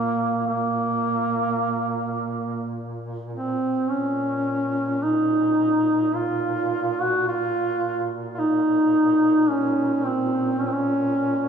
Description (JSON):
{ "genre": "caucasian folk, Caucasian lament", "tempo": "53 BPM", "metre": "3/4", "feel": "rubato", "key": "Bb minor", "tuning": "A4 = 440 Hz", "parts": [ { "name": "warm duduk", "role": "melody", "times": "0.0-11.5 s", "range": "Bb3 to Gb4", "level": "-21 LUFS", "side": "right 1 dB", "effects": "none" }, { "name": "mellow duduk", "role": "drone", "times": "0.0-11.5 s", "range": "Bb2", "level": "-31 LUFS", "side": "right 1 dB", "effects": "none" } ], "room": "wet church reverb, RT60 3.2 s", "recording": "small room ambience", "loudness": "-20 LUFS", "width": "side -7 dB against mid", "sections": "0.0-3.9 A section; 3.9-11.5 B section", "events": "none", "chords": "none" }